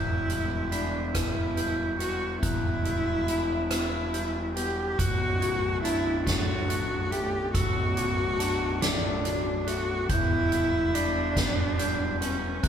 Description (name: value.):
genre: post-rock.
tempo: 47 BPM (dotted quarters).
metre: 6/8.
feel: straight.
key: unclear.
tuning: A4 = 441 Hz.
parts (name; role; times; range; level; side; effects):
rich cello; melody; 0.0-12.7 s; B3 to G4; -29 LUFS; equal; none.
electric guitar through a small old amp; arpeggios; 0.0-12.7 s; B1 to E4; -34 LUFS; left 3 dB; none.
glockenspiel with rubber mallets; arpeggios; 0.0-12.7 s; D6 to B6; -36 LUFS; right 2 dB; none.
fuzz fingered electric bass; bass; 0.0-12.7 s; B0 to E1; -32 LUFS; equal; overdrive.
soft-mallet drum kit; drums; 0.3-12.7 s; hi-hat, kick drum, rim click, snare drum; -30 LUFS; equal; none.
room: wet large studio reverb, RT60 1.4 s.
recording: band playing live in one room.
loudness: -25 LUFS.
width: side -8 dB against mid.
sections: 0.0-12.7 A section.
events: none.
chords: 0.0 Em; 5.0 Bm7; 10.1 Em.